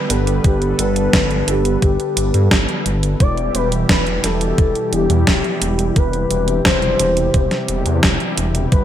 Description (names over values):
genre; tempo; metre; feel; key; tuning
synthwave; 87 BPM; 4/4; straight; unclear; A4 = 439 Hz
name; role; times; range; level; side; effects
expressive portamento lead; melody; 0.0-8.8 s; G4 to D5; -21 LUFS; left 1 dB; lush chorus, cassette tape, digital delay
brassy analog pad; sustained chords; 0.0-8.8 s; B2 to B4; -22 LUFS; equal; chorus, sidechain pumping
wide detuned saw bass; bass; 0.1-8.8 s; E1 to G2; -19 LUFS; equal; chorus
clean 12-bit digital drum machine; drums; 0.1-8.8 s; hi-hat, snare drum; -19 LUFS; right 1 dB; gated reverb
electronic kick drum; drums; 0.4-8.8 s; none; -16 LUFS; equal; none
room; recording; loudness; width
light reverb; bright 1980s-style digital production; -14 LUFS; side -10 dB against mid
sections
0.0-8.8 A section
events
none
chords
0.0 G; 3.2 Em; 6.0 C/E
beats
| 0.45 1.13 1.82 2.51 | 3.20 3.89 4.58 5.27 | 5.96 6.65 7.34 8.03 | 8.72